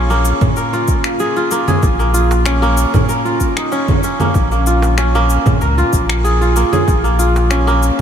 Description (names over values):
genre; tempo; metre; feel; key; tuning
organic downtempo; 95 BPM; 4/4; straight; Bb minor pentatonic; A4 = 440 Hz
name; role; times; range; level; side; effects
kora; arpeggios; 0.0-8.0 s; Bb3 to Bb4; -16 LUFS; right 1 dB; analog delay
warm sub bass; bass; 0.0-7.9 s; Bb1 to Db2; -15 LUFS; equal; sidechain pumping
electronic shaker, congas and finger snaps; drums; 0.1-8.0 s; none; -21 LUFS; equal; overdrive
electronic kick drum; drums; 0.4-7.0 s; none; -16 LUFS; equal; overdrive
darbuka; percussion; 0.4-8.0 s; none; -24 LUFS; right 3 dB; none
room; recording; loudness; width
moderate huge ambient reverb, RT60 7.4 s; dreamy mix soaked in reverb; -12 LUFS; side -8 dB against mid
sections
0.0-8.0 A section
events
none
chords
0.0 Bbm7